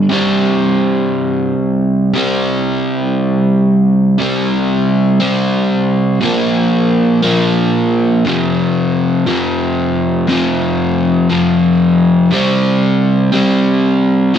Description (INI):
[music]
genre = rock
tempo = 59 BPM (dotted quarters)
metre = 6/8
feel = straight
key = unclear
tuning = A4 = 441 Hz
[part]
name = crunchy overdriven guitar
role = solo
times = 0.0-14.4 s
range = F2 to C4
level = -11 LUFS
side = equal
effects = none
[sound]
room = moderate stone room reverb, RT60 1.1 s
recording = band playing live in one room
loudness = -11 LUFS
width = side -8 dB against mid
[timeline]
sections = 0.0-4.2 A section; 4.2-14.4 B section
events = none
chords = 0.1 C5; 6.2 Bb5; 8.3 F5; 12.3 C5